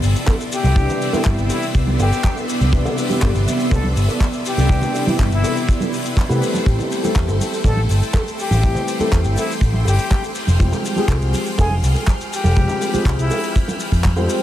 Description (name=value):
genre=nu-disco, nu disco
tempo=122 BPM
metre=4/4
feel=straight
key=C major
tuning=A4 = 439 Hz
part: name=dark concert grand piano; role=accompaniment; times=0.0-14.4 s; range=C3 to C5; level=-24 LUFS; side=left 1 dB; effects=analog chorus, sidechain pumping, diffuse ambient delay
part: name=string machine, full ensemble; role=sustained chords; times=0.0-14.4 s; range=B3 to F6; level=-26 LUFS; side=right 1 dB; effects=ensemble chorus, sidechain pumping
part: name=picked electric bass with an envelope filter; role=bass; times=0.0-14.3 s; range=F1 to C3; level=-17 LUFS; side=equal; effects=tube saturation, sidechain pumping
part: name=damped 70s drum kit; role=drums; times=0.0-14.4 s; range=handclaps, hi-hat, shaker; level=-28 LUFS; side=left 2 dB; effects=small room ambience
part: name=cabasa, congas and bongos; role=percussion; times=0.0-14.4 s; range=none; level=-27 LUFS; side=right 2 dB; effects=none
part: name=kick drum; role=drums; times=0.3-14.1 s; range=none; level=-17 LUFS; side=equal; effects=small room ambience
part: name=silver concert flute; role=melody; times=0.5-13.6 s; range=E4 to A4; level=-27 LUFS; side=left 3 dB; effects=diffuse ambient delay
room=light reverb, studio reverb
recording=none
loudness=-16 LUFS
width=side -12 dB against mid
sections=0.0-14.4 A section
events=none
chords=0.0 Cmaj9; 6.4 Am7; 10.4 Fmadd9